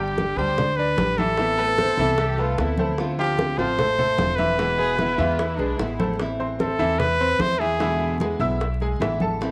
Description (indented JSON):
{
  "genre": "latin, Cuban son and guajira",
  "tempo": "150 BPM",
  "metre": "4/4",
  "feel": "straight",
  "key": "A harmonic minor from 6.2 s",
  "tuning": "A4 = 440 Hz",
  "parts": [
    { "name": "clear trumpet", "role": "melody", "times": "0.0-8.2 s", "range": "G4 to C5", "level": "-25 LUFS", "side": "equal", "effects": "none" },
    { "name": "nylon-string guitar", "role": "accompaniment", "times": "0.0-9.5 s", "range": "B2 to G4", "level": "-32 LUFS", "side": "equal", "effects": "none" },
    { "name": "bright grand piano", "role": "arpeggios", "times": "0.0-9.5 s", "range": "E3 to E6", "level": "-29 LUFS", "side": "equal", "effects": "none" },
    { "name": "upright bass", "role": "bass", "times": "0.0-9.5 s", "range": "E1 to E2", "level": "-31 LUFS", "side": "equal", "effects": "none" },
    { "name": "bongos", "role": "percussion", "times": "0.2-9.5 s", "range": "none", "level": "-32 LUFS", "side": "equal", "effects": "none" },
    { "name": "congas", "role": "percussion", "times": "0.2-9.5 s", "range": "none", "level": "-32 LUFS", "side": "equal", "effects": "none" },
    { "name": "warm studio violin section", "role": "second line", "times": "1.6-6.2 s", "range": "D4 to C5", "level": "-33 LUFS", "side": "equal", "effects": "none" }
  ],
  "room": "light reverb, small room ambience",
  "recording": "vinyl crackle",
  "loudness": "-22 LUFS",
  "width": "mono",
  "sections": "0.0-6.2 A section; 6.2-9.5 B section",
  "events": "none",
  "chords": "0.0 Gsus2; 1.4 Amadd9; 3.0 Dm7; 4.6 E; 6.2 Am; 7.8 E7"
}